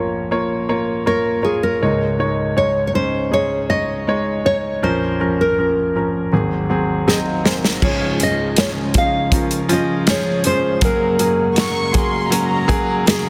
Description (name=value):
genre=pop ballad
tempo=80 BPM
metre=4/4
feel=straight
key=Db major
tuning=A4 = 440 Hz
part: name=clear concert grand piano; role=accompaniment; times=0.0-13.3 s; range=Ab1 to Ab5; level=-22 LUFS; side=equal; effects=none
part: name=nylon-string guitar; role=melody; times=1.1-13.3 s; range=Ab4 to F5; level=-23 LUFS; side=equal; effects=tape echo
part: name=natural country drum kit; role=drums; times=7.1-13.2 s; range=crash cymbal, hi-hat, kick drum, snare drum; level=-21 LUFS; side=equal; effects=none
part: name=percussive tonewheel organ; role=sustained chords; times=7.8-13.3 s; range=Db3 to Bb4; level=-30 LUFS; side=equal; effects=overdrive, chorus vibrato, slow rotary speaker
part: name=picked steel-string acoustic guitar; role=arpeggios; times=7.8-13.3 s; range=Db3 to Ab4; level=-31 LUFS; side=equal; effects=none
part: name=warm studio violin section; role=second line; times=11.6-12.9 s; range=Bb5 to Db6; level=-27 LUFS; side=equal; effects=tape echo
room=moderate lush hall reverb, RT60 2.5 s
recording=dense, heavily limited modern master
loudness=-18 LUFS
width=mono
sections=0.0-7.8 A section; 7.8-13.3 B section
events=grand piano fill 6.7-7.8; drum fill 7.1-7.8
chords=0.0 Bbm; 1.8 Dbsus2; 4.8 Bbm; 6.3 Ab7; 7.8 Db; 10.8 Gbadd9